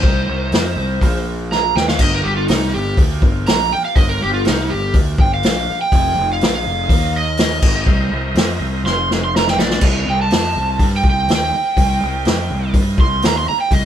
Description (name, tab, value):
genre	blues rock power trio and southern rock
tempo	123 BPM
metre	4/4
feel	straight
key	unclear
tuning	A4 = 442 Hz
part	overdriven slide guitar	melody	0.0-13.8 s	Eb4 to C6	-20 LUFS	right 2 dB	none
part	overdriven tonewheel organ	sustained chords	0.0-13.8 s	F3 to F5	-30 LUFS	right 2 dB	slow rotary speaker
part	fuzz fingered electric bass	bass	0.0-13.8 s	F1 to G2	-20 LUFS	equal	overdrive
part	vintage drum kit	drums	0.0-13.8 s	crash cymbal, hi-hat, kick drum, snare drum	-16 LUFS	equal	none
room	light reverb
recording	band playing live in one room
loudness	-14 LUFS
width	side -10 dB against mid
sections	0.0-9.8 A section; 9.8-13.8 A section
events	electric slide guitar solo 0.0-13.8; drum fill 1.5-2.0, 8.8-9.8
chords	0.0 C7#9; 1.0 Bb5; 1.8 Ebadd9; 2.0 G7#9; 5.9 F7#9; 6.9 Eb5; 7.6 Ab5; 7.9 C7#9; 8.8 F5; 9.6 Bb; 9.8 C7#9